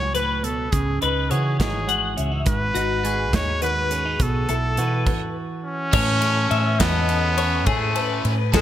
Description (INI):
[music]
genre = math rock and midwest emo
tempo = 69 BPM (dotted quarters)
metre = 6/8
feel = straight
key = A lydian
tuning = A4 = 439 Hz
[part]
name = bright trumpet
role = melody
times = 0.0-8.6 s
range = G#3 to C#5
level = -25 LUFS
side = equal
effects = none
[part]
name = semi-hollow electric guitar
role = accompaniment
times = 0.0-6.8 s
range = G#2 to G#4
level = -29 LUFS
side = right 5 dB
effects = spring reverb
[part]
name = hollow-body short-scale fingered electric bass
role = bass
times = 0.0-8.6 s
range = G#1 to C#3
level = -24 LUFS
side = equal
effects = none
[part]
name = twelve-string electric guitar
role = arpeggios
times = 0.1-8.6 s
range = F#4 to F#5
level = -27 LUFS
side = left 7 dB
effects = ensemble chorus
[part]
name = modern studio drum kit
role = drums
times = 0.1-8.6 s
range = crash cymbal, hi-hat, kick drum, ride cymbal, snare drum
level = -25 LUFS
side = equal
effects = gated reverb
[part]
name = overdriven electric guitar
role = riff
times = 5.9-8.6 s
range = A3 to A4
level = -28 LUFS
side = equal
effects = none
[sound]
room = light reverb, studio reverb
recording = bright 1980s-style digital production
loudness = -19 LUFS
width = side -11 dB against mid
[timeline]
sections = 0.0-5.9 A section; 5.9-8.6 B section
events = stop 5.1-5.9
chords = 0.0 F#m9; 0.7 C#m11; 2.5 G#m7; 4.2 B7sus4; 5.9 A